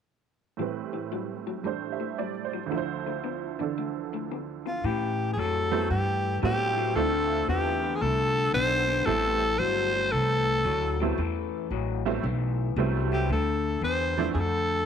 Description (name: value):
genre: electric blues shuffle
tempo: 114 BPM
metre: 4/4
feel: swing 65% on 8ths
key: A minor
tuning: A4 = 440 Hz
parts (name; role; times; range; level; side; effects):
- honky-tonk upright piano; accompaniment; 0.6-14.3 s; D2 to E5; -32 LUFS; right 12 dB; none
- electric guitar through a small old amp; riff; 0.6-14.8 s; A2 to B3; -32 LUFS; left 16 dB; phaser
- growling tenor saxophone; melody; 4.7-14.9 s; F4 to C5; -27 LUFS; equal; none
- upright bass; bass; 4.8-14.9 s; G1 to A2; -29 LUFS; equal; none
room: light reverb, studio ambience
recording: 1960s-style stereo with parts hard left and right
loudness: -25 LUFS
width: side -8 dB against mid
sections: 0.6-4.8 A section; 4.8-14.9 B section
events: none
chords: 0.6 Am7; 2.7 Dm7; 4.8 Am9; 7.0 Dm9; 9.1 Am9; 13.3 Dm9